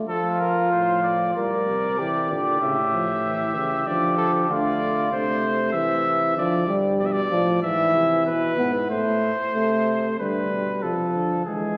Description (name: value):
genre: classical, imitative canzona for brass ensemble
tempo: 95 BPM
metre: 4/4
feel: straight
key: D minor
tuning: A4 = 440 Hz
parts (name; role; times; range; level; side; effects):
- mellow euphonium; accompaniment; 0.0-11.8 s; C#3 to B3; -26 LUFS; equal; none
- clear trumpet; melody; 0.1-11.8 s; G#4 to E5; -28 LUFS; equal; none
- warm flugelhorn; second line; 0.1-5.1 s; F4 to Bb4; -26 LUFS; equal; none
- dark bass trombone; bass; 0.7-11.8 s; G#2 to E3; -33 LUFS; equal; none
room: wet scoring stage reverb, RT60 2.0 s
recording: none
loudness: -23 LUFS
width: mono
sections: 0.1-10.2 A section; 10.2-11.8 B section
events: none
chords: 0.1 Dm/F; 1.4 Gm/Bb; 2.6 A; 3.9 Dm; 5.1 Am/C; 6.4 Dm; 7.6 E/G#; 8.9 Am; 10.2 Dm